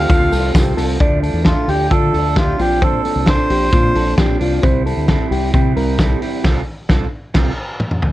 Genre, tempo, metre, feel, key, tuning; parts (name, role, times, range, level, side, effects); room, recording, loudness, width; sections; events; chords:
jangly indie pop; 132 BPM; 4/4; straight; F major; A4 = 439 Hz
melodica; melody; 0.0-4.1 s; F4 to F5; -20 LUFS; right 1 dB
electric guitar through a small old amp; accompaniment; 0.0-7.5 s; Bb2 to A4; -22 LUFS; right 6 dB
warm analog pad; sustained chords; 0.0-1.0 s; A3 to C5; -29 LUFS; left 1 dB; chorus
mellow electric guitar; arpeggios; 0.0-6.4 s; F4 to D5; -22 LUFS; left 4 dB
fingered electric bass; bass; 0.0-7.5 s; Bb1 to D3; -19 LUFS; equal
loose indie drum kit; drums; 0.1-8.1 s; crash cymbal, hi-hat, kick drum, snare drum, toms; -16 LUFS; equal
tambourine; percussion; 0.1-0.9 s; -37 LUFS; left 6 dB
light reverb; cassette tape; -13 LUFS; side -15 dB against mid
0.0-1.0 A section; 1.0-8.1 B section
band accent 6.4-8.1; drum fill 7.3-8.1
0.0 F; 1.0 Dm; 2.6 Bbadd9; 4.6 C; 6.4 F/C